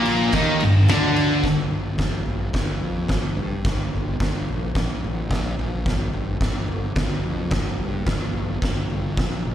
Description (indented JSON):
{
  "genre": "garage rock duo or trio",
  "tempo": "109 BPM",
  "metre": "4/4",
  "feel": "straight",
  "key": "G minor",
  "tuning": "A4 = 440 Hz",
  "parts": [
    { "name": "thick fuzz guitar", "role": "riff", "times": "0.0-1.4 s", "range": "G2 to Eb4", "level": "-17 LUFS", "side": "equal", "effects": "distortion, slapback echo" },
    { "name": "fuzz fingered electric bass", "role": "bass", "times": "0.0-9.5 s", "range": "G1 to G2", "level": "-26 LUFS", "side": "equal", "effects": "overdrive, tube saturation" },
    { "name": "oversized low-tuned drum kit", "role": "drums", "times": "0.1-9.5 s", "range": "kick drum, ride cymbal, snare drum, toms", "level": "-24 LUFS", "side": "equal", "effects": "none" }
  ],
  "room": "small room ambience",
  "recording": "live gig heard through the venue's PA, recital hall reverb",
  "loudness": "-20 LUFS",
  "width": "side -10 dB against mid",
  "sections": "0.0-1.4 A section; 1.4-9.5 B section",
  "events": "none",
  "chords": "0.0 Gm; 1.4 N.C."
}